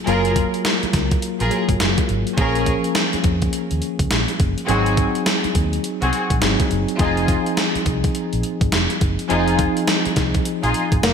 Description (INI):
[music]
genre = R&B, new jack swing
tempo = 104 BPM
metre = 4/4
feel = swing 62% on 16ths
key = unclear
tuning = A4 = 438 Hz
[part]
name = tine electric piano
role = accompaniment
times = 0.0-11.1 s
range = F3 to Bb4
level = -22 LUFS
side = left 1 dB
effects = medium stereo tremolo
[part]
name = warm studio string section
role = stabs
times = 0.1-10.8 s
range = C4 to Bb4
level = -25 LUFS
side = equal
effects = ping-pong delay
[part]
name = vintage muted fingered electric bass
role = bass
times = 0.1-11.1 s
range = F1 to F2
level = -23 LUFS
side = equal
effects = none
[part]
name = gated 80s digital drum machine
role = drums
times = 0.1-11.1 s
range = hi-hat, kick drum, snare drum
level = -21 LUFS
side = equal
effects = gated reverb, gated reverb snare, overdrive
[part]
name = nylon-string guitar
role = melody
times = 11.0-11.1 s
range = Bb3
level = -18 LUFS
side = left 1 dB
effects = none
[sound]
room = moderate plate reverb, RT60 2.5 s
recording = bright 1980s-style digital production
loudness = -17 LUFS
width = side -7 dB against mid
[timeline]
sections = 0.0-11.1 A section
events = none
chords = 0.0 Gbmaj9; 2.4 Bbm7; 4.7 Ab7; 7.0 Fm7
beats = | 0.07 0.65 1.22 1.80 | 2.38 2.96 3.53 4.11 | 4.69 5.26 5.84 6.42 | 6.99 7.57 8.15 8.72 | 9.30 9.88 10.46 11.03